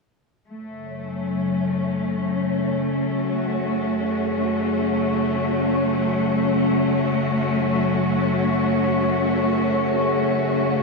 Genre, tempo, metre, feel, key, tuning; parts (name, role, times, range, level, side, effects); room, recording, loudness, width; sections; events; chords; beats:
dark ambient drone; free time; F# minor; A4 = 438 Hz
warm studio cello section; sustained chords; 0.5-10.8 s; A3 to F#4; -23 LUFS; equal
overtone-sweeping drone; drone; 0.9-10.8 s; F#2 to C#3; -23 LUFS; left 1 dB; chorus, built-in reverb
flickering grainy texture; texture; 0.9-10.8 s; C#5; -28 LUFS; left 4 dB; built-in reverb
wet cathedral reverb, RT60 4.9 s; in a vast, echoing space; -19 LUFS; side -2 dB against mid
0.5-10.8 A section
0.5 F#m
free time